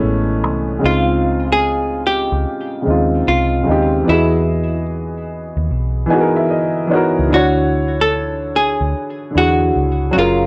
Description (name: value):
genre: hip hop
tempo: 74 BPM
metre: 4/4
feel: swing 65% on 16ths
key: unclear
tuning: A4 = 440 Hz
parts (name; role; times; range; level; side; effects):
- warm upright piano; accompaniment; 0.0-10.5 s; C#3 to G#5; -19 LUFS; equal; low-pass filter
- vintage muted fingered electric bass; bass; 0.0-10.5 s; F#1 to E2; -22 LUFS; equal; transformer saturation
- archtop guitar, miked and amplified; melody; 0.9-10.5 s; E4 to A4; -20 LUFS; equal; low-pass filter
room: light reverb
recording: dry, gritty hardware recording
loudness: -16 LUFS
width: mono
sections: 0.8-10.5 A section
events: break 0.0-0.8; upright piano fill 5.7-7.3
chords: 0.0 Amaj9; 0.8 C#maj9; 4.1 Emaj9; 7.3 Dmaj9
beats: 0.02 | 0.83 1.64 2.45 3.26 | 4.07 4.88 5.70 6.51 | 7.32 8.13 8.94 9.75